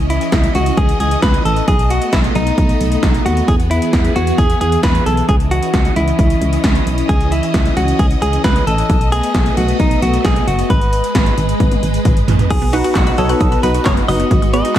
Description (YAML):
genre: synth-pop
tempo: 133 BPM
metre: 4/4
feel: straight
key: unclear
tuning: A4 = 440 Hz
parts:
  - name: string machine, violins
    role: sustained chords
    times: 0.0-14.8 s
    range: E3 to D#5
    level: -20 LUFS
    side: equal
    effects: ensemble chorus
  - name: solid FM bass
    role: bass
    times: 0.0-14.8 s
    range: F#1 to E2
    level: -18 LUFS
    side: equal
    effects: none
  - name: direct-recorded clean electric guitar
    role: melody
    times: 0.1-14.8 s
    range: D#4 to D#5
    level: -19 LUFS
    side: equal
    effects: digital delay
  - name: 80s electronic pad drums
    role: drums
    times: 0.1-14.8 s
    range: crash cymbal, handclaps, hi-hat, kick drum, snare drum, toms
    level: -16 LUFS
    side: equal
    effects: gated reverb on snare and toms, gated reverb
  - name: resonant blip pluck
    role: arpeggios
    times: 12.5-14.8 s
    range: F#3 to F#6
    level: -23 LUFS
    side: right 3 dB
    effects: phaser, digital delay
  - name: warbly dusty pluck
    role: accompaniment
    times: 12.7-14.7 s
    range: D#4 to C#5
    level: -20 LUFS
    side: left 1 dB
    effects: chorus
room: light reverb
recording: none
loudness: -12 LUFS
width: side -12 dB against mid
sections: 0.0-12.5 A section; 12.5-14.8 B section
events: drum fill 11.6-12.5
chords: 0.0 C#madd9; 1.7 B7; 3.5 E; 5.3 C#madd9; 8.9 B7; 10.7 G#m; 12.5 B